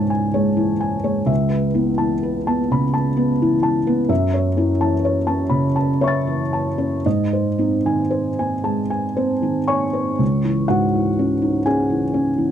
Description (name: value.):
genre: neoclassical minimalist piano.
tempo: 37-44 BPM (dotted quarters).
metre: 6/8.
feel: rubato.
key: C# minor.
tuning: A4 = 438 Hz.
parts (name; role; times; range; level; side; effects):
felt-muted upright piano; solo; 0.0-12.5 s; C#2 to A6; -17 LUFS; equal; none.
room: little or no reverb.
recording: dry, close 1970s-style studio recording.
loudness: -17 LUFS.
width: side -9 dB against mid.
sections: 0.0-10.2 A section; 10.2-12.5 B section.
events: none.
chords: 0.0 C#m; 1.3 Aadd9/C#; 4.1 F#m7; 7.1 G#; 10.2 C#m.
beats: | 1.30 2.70 | 4.10 5.51 | 7.05 8.64 | 10.21 11.67.